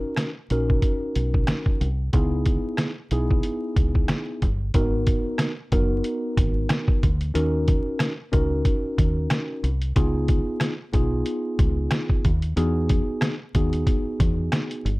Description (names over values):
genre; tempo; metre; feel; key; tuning
hip hop, boom-bap hip-hop; 92 BPM; 4/4; swing 56% on 16ths; G# minor; A4 = 441 Hz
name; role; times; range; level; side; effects
mellow tine electric piano; accompaniment; 0.0-14.9 s; B3 to A#4; -27 LUFS; equal; medium stereo tremolo, high-pass filter, low-pass filter
trip hop sampler-style drum kit; drums; 0.2-15.0 s; hi-hat, kick drum, rim click, snare drum; -22 LUFS; equal; none
deep dub fingered electric bass; bass; 0.5-15.0 s; F#1 to E2; -24 LUFS; equal; none
room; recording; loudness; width
light reverb; dark, warm production, vinyl crackle; -21 LUFS; side -22 dB against mid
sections
0.0-4.7 A section; 4.7-15.0 B section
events
none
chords
0.0 Bmaj7; 2.1 C#m7; 4.7 G#m7; 7.4 D#m7; 10.0 C#7; 12.6 Emaj7